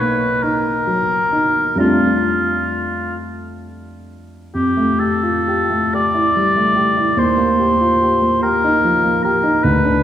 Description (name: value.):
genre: classical, impressionist duo for oboe and grand piano.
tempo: 41-50 BPM (dotted quarters).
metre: 6/8.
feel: rubato.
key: unclear.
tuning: A4 = 439 Hz.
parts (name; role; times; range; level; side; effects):
warm oboe; melody; 0.0-10.0 s; F4 to D5; -16 LUFS; equal; none.
dark grand piano; accompaniment; 0.0-10.0 s; B1 to G4; -18 LUFS; equal; none.
room: wet concert hall reverb, RT60 2.1 s.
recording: heard from further back in the room.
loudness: -14 LUFS.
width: side -10 dB against mid.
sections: 0.0-4.5 A section; 4.5-10.0 B section.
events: none.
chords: 0.0 Bmaj7; 1.8 F69; 4.5 Fmaj9; 7.2 Eb69.